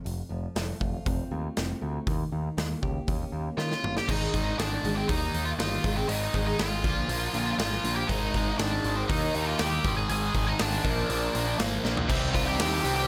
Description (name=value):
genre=quiet-loud alternative rock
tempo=120 BPM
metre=4/4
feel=straight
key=unclear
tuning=A4 = 438 Hz
part: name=picked steel-string acoustic guitar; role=arpeggios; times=0.0-8.1 s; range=F2 to G4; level=-37 LUFS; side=equal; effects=slapback echo
part: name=growling picked electric bass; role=bass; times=0.1-13.0 s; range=F1 to Eb3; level=-35 LUFS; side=equal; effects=overdrive
part: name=big rock drum kit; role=drums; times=0.1-13.0 s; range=crash cymbal, hi-hat, kick drum, snare drum, toms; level=-34 LUFS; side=equal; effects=none
part: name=octave-fuzz lead guitar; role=melody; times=3.6-13.1 s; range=C4 to Ab5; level=-33 LUFS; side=equal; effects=distortion, slapback echo
part: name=cranked stack guitar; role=riff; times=4.1-13.1 s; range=Ab2 to G4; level=-36 LUFS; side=equal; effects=overdrive
part: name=overdriven semi-hollow guitar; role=riff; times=8.1-13.1 s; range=Ab2 to G4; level=-34 LUFS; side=equal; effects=phaser
part: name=tight distorted guitar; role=riff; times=12.1-13.1 s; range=C3 to C4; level=-37 LUFS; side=equal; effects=none
room=light reverb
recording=none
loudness=-28 LUFS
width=mono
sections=0.0-4.1 A section; 4.1-12.1 B section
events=drum fill 3.6-4.1, 11.8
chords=0.0 F; 2.1 Eb7; 4.1 Ab; 5.1 Eb; 5.8 Ab; 6.8 Bb; 8.1 Ab5; 9.1 Eb; 9.8 Ab5; 10.8 Bb; 12.1 Cm